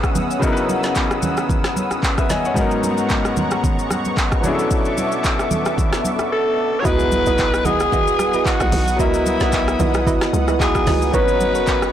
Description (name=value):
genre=amapiano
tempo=112 BPM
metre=4/4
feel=swing 55% on 16ths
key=C# dorian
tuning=A4 = 439 Hz
part: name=clear concert grand piano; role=accompaniment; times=0.0-11.9 s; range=G#2 to G#5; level=-23 LUFS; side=left 3 dB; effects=none
part: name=lush unison pad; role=sustained chords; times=0.0-11.9 s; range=G#3 to E6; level=-25 LUFS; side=equal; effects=chorus, sidechain pumping
part: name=afro-pop drum kit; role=drums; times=0.0-11.9 s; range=handclaps, hi-hat, kick drum, rim click, shaker, snare drum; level=-21 LUFS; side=equal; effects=none
part: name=congas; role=percussion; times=0.2-11.5 s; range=none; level=-26 LUFS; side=right 3 dB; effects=none
part: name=raspy alto saxophone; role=melody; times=6.3-11.9 s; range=E4 to C#5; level=-20 LUFS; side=left 1 dB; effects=tape echo
part: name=soft round pluck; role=stabs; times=6.8-11.6 s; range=E4 to A#5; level=-22 LUFS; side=right 6 dB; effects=chorus, tape echo
part: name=hollow log drum bass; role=bass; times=6.9-11.9 s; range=F#1 to C#2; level=-22 LUFS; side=equal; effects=transformer saturation
part: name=impact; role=sound effects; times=6.9-9.0 s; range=none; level=-31 LUFS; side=equal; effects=none
room=light reverb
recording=blown-out, overdriven recording, overdrive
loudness=-16 LUFS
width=side -10 dB against mid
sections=0.0-6.9 A section; 6.9-11.9 B section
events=drop 6.9-11.9; impact 6.9-9.0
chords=0.0 C#m11; 2.6 G#m11; 4.4 Bm11; 6.9 C#m11; 11.1 G#m11